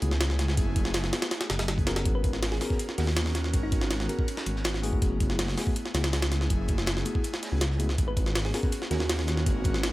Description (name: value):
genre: drum and bass, jungle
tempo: 162 BPM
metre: 4/4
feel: straight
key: G# phrygian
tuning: A4 = 440 Hz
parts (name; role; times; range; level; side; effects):
- airy breathy pad; sustained chords; 0.0-9.9 s; A3 to A#4; -36 LUFS; right 1 dB; chorus
- mellow tine electric piano; stabs; 0.0-9.0 s; A3 to A#4; -37 LUFS; left 3 dB; dub echo
- dark detuned saw bass; bass; 0.0-9.9 s; F#1 to D#2; -28 LUFS; equal; none
- crunchy breakbeat drum kit; drums; 0.0-9.9 s; hi-hat, snare drum; -43 LUFS; right 2 dB; none
- jungle sampler-style drum kit; drums; 0.0-9.9 s; hi-hat, kick drum, snare drum; -28 LUFS; equal; none
- thumb-piano-like synth pluck; melody; 2.1-3.8, 8.1-9.1 s; D#4 to B4; -38 LUFS; right 1 dB; chorus, dub echo
room: digital ambience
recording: none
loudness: -25 LUFS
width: side -18 dB against mid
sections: 0.0-9.9 A section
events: none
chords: 0.0 F#m11; 2.1 G#m11; 5.0 F#m11; 8.0 G#m11